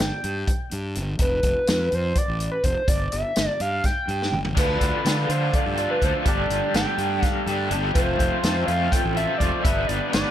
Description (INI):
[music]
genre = psychedelic rock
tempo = 249 BPM (eighths)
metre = 7/8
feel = straight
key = unclear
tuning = A4 = 440 Hz
[part]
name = overdriven synth lead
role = melody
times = 0.0-10.3 s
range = B4 to G5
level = -26 LUFS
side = equal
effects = tape echo
[part]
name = fuzz fingered electric bass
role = bass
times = 0.0-10.2 s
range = F1 to D3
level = -27 LUFS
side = equal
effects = overdrive
[part]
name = vintage drum kit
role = drums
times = 0.0-10.2 s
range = crash cymbal, hi-hat, kick drum, snare drum, toms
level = -24 LUFS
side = equal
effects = none
[part]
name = raw garage guitar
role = riff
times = 4.5-10.3 s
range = D3 to B4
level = -25 LUFS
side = left 1 dB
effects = overdrive, tremolo
[part]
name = combo organ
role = sustained chords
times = 4.6-10.3 s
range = C3 to B4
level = -34 LUFS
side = right 6 dB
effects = none
[sound]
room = moderate studio reverb, RT60 0.6 s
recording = none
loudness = -20 LUFS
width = side -11 dB against mid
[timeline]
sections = 0.0-10.3 A section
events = drum fill 4.2-4.6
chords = 0.0 G5; 1.2 F5; 2.9 Em/G; 4.6 Dm; 6.3 Gsus2; 8.0 F; 9.6 G